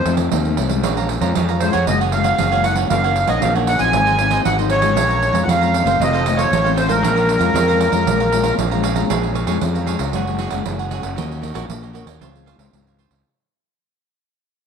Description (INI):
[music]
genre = samba and choro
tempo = 116 BPM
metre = 4/4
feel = straight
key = Bb minor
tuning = A4 = 438 Hz
[part]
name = accordion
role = melody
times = 0.0-8.5 s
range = Bb4 to Ab5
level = -18 LUFS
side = right 1 dB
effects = light tremolo tuning
[part]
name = nylon-string guitar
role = accompaniment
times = 0.0-13.2 s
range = F2 to Gb4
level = -24 LUFS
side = left 13 dB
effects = none
[part]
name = fuzz fingered electric bass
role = bass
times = 0.0-13.2 s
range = F1 to F2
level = -21 LUFS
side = left 1 dB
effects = overdrive
[part]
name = pandeiro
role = percussion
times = 0.1-13.2 s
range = none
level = -23 LUFS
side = right 10 dB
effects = none
[part]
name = cavaquinho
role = accompaniment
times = 0.8-13.2 s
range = Eb4 to Bb5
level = -25 LUFS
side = right 10 dB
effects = none
[sound]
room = moderate echo chamber reverb, RT60 1.4 s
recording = 1960s-style stereo with parts hard left and right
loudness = -15 LUFS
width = side -6 dB against mid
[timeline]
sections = 0.0-9.1 A section; 9.1-13.2 B section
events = fade-out 9.1-13.2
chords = 0.0 F7; 0.8 Bbm7; 1.9 Gbsus2; 2.9 Ebm7/Gb; 3.9 Ab7; 5.0 Bbm7; 6.0 F7; 7.0 Bbm7; 10.1 Gbsus2; 11.2 Ebm7; 12.2 Dbmaj7